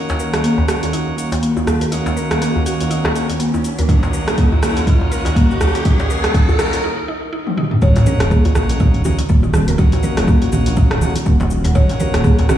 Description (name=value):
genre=afro house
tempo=122 BPM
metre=4/4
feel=swing 57% on 16ths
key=Eb minor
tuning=A4 = 439 Hz
part: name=warm analog pad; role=sustained chords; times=0.0-12.6 s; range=Eb3 to F5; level=-25 LUFS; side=right 2 dB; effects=chorus, vintage 12-bit sampler grit, sidechain pumping
part: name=mallet-like synth pluck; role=arpeggios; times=0.0-12.6 s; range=Bb3 to Bb4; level=-24 LUFS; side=left 1 dB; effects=chorus, sidechain pumping, tape echo
part: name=bright tonewheel organ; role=stabs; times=0.0-12.6 s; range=Bb3 to Gb4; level=-25 LUFS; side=left 2 dB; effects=overdrive, stopped rotary speaker, sidechain pumping, tape echo
part: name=riser and sub drop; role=sound effects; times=1.1-9.8 s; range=none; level=-24 LUFS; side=equal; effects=none
part: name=deep house drum kit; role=drums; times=0.1-12.6 s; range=cabasa, hi-hat, rim click, toms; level=-23 LUFS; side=equal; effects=overdrive
part: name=djembe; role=percussion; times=0.1-12.5 s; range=none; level=-22 LUFS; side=equal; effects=none
part: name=electronic kick drum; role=drums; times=3.9-12.4 s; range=none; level=-14 LUFS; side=equal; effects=overdrive
part: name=kalimba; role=melody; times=7.8-12.6 s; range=Gb4 to Db5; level=-27 LUFS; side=left 1 dB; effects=tape echo
part: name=dark detuned saw bass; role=bass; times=7.8-12.6 s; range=Eb1 to Bb1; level=-19 LUFS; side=equal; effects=sidechain pumping
part: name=congas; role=percussion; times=7.8-12.6 s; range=none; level=-22 LUFS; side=right 3 dB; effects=none
room=light reverb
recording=played on a big sound system in a bare room, large studio reverb, small room ambience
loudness=-13 LUFS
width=side -11 dB against mid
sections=0.0-7.8 A section; 7.8-12.6 B section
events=build-up 0.0-7.8; filter sweep on synth pluck 0.0-7.8; riser 1.1-6.8; break 6.8-7.8; drum fill 7.5-7.8; drop 7.8-12.6; impact 7.8-9.8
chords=0.0 Ebm7